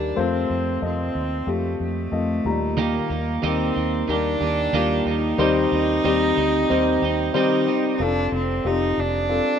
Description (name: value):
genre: pop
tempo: 92 BPM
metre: 4/4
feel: swing 56% on 16ths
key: F mixolydian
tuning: A4 = 439 Hz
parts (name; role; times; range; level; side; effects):
- rich cello; melody; 0.0-9.6 s; A3 to Eb4; -25 LUFS; right 2 dB; none
- dark upright piano; accompaniment; 0.0-9.6 s; Bb2 to Bb5; -23 LUFS; left 4 dB; none
- vintage muted fingered electric bass; bass; 0.0-9.4 s; F1 to F2; -27 LUFS; right 1 dB; none
- twelve-string electric guitar; riff; 2.8-8.0 s; Eb3 to G4; -25 LUFS; right 6 dB; none
room: moderate plate reverb, RT60 3.3 s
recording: rough home demo mix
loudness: -19 LUFS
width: side -8 dB against mid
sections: 0.0-8.0 A section; 8.0-9.6 B section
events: none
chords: 0.2 F; 2.5 Eb; 5.4 Cm; 8.0 F